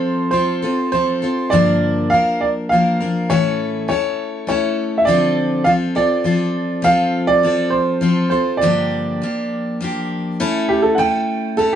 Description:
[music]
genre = rock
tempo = 102 BPM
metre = 3/4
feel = straight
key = unclear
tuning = A4 = 441 Hz
[part]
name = warm grand piano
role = melody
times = 0.0-11.8 s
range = G4 to G5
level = -18 LUFS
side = right 2 dB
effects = none
[part]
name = picked steel-string acoustic guitar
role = accompaniment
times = 0.0-11.8 s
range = G2 to Bb4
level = -18 LUFS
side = left 2 dB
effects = none
[sound]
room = moderate studio reverb, RT60 0.6 s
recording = band playing live in one room, nothing above 10.8 kHz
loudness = -15 LUFS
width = side -9 dB against mid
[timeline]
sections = 0.0-10.4 A section; 10.4-11.8 B section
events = grand piano solo 10.4-11.8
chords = 0.0 F; 1.5 Gm7; 3.3 A; 5.1 Dm7; 6.9 F; 8.6 Gm7; 10.4 A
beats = 0.34 0.93 | 1.52 2.12 2.71 | 3.30 3.89 4.49 | 5.08 5.67 6.26 | 6.85 7.44 8.03 | 8.62 9.21 9.80 | 10.40 10.99 11.58

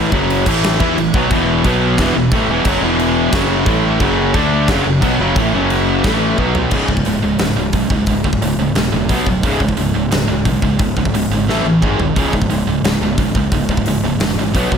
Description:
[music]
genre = heavy metal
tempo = 177 BPM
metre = 4/4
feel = straight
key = C# phrygian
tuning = A4 = 439 Hz
[part]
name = distorted electric guitar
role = riff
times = 0.0-14.8 s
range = C#2 to E4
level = -19 LUFS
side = left 9 dB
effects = distortion
[part]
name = heavy high-gain guitar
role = riff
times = 0.0-14.8 s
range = C#2 to E4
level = -18 LUFS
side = right 9 dB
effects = distortion
[part]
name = overdriven electric guitar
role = riff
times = 0.0-6.7 s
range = E2 to E4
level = -20 LUFS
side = left 1 dB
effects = none
[part]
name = fuzz fingered electric bass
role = bass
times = 0.0-14.8 s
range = C#1 to E2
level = -21 LUFS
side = equal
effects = overdrive
[part]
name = big rock drum kit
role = drums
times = 0.1-14.8 s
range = crash cymbal, hi-hat, kick drum, snare drum, toms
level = -19 LUFS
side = equal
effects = none
[sound]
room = light reverb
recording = none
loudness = -13 LUFS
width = side -7 dB against mid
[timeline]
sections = 0.0-6.7 A section; 6.7-14.8 B section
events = drum fill 6.4-6.7, 11.5-12.2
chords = 0.1 F#5; 0.5 A5; 1.3 E5; 1.6 B5; 2.0 E5; 3.3 F#5; 3.7 A5; 4.0 F#5; 4.4 D5; 4.7 F#5; 6.0 A5; 6.4 B5; 6.7 C#m; 9.1 B5; 9.4 C#5; 11.5 A5; 11.8 G#5; 12.2 C#5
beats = 0.29 0.63 0.97 | 1.31 1.65 1.99 2.32 | 2.66 3.00 3.34 3.68 | 4.02 4.35 4.69 5.03 | 5.37 5.71 6.05 6.38 | 6.72 7.06 7.40 7.74 | 8.08 8.42 8.76 9.10 | 9.44 9.78 10.12 10.46 | 10.80 11.14 11.48 11.82 | 12.17 12.51 12.85 13.19 | 13.53 13.87 14.21 14.55

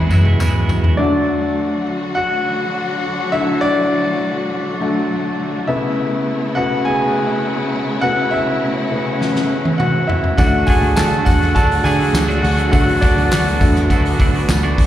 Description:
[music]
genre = piano-driven pop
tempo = 102 BPM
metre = 4/4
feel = straight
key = unclear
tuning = A4 = 436 Hz
[part]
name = clear concert grand piano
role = accompaniment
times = 0.0-14.9 s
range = C#3 to A5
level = -18 LUFS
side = left 1 dB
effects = slapback echo
[part]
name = rich studio string section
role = sustained chords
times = 0.0-14.9 s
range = C#3 to F#4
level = -23 LUFS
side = left 1 dB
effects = none
[part]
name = twelve-string electric guitar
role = riff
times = 0.0-1.5, 10.4-14.9 s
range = D3 to F#4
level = -21 LUFS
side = right 5 dB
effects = harmonic tremolo, slapback echo
[part]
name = vintage muted picked electric bass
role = bass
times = 0.0-0.9, 10.4-14.9 s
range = D2 to D3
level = -17 LUFS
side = equal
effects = none
[part]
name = tambourine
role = percussion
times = 0.1-0.8, 10.4-14.6 s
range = none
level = -34 LUFS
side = left 3 dB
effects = none
[part]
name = natural country drum kit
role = drums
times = 0.3-1.0, 9.2-14.9 s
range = handclaps, hi-hat, kick drum, snare drum, toms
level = -18 LUFS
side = equal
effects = none
[sound]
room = little or no reverb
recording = live gig heard through the venue's PA, recital hall reverb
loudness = -14 LUFS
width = side -12 dB against mid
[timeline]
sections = 1.0-14.9 A section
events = drum fill 0.0-1.0, 9.2-10.4; grand piano solo 1.0-14.9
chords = 0.0 Eadd9; 1.0 D; 5.7 Aadd9; 10.4 D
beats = 0.40 | 0.98 1.57 2.16 2.75 | 3.33 3.92 4.51 5.10 | 5.68 6.27 6.86 7.45 | 8.03 8.62 9.21 9.80 | 10.38 10.97 11.56 12.14 | 12.73 13.32 13.90 14.49

